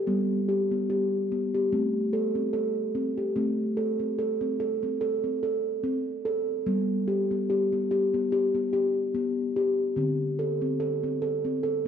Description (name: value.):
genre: world meditative, meditative tuned percussion.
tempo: 73 BPM.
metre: 4/4.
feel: swing 55% on 16ths.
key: A minor.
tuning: A4 = 440 Hz.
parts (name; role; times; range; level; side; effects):
steel tongue drum; solo; 0.0-11.9 s; D3 to A4; -25 LUFS; equal; none.
room: wet echo chamber reverb, RT60 2.1 s.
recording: dark, warm production.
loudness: -25 LUFS.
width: side -8 dB against mid.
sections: 0.0-3.4 A section; 3.4-11.9 B section.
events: none.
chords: 0.1 G; 1.7 Am; 6.7 G; 10.0 D5.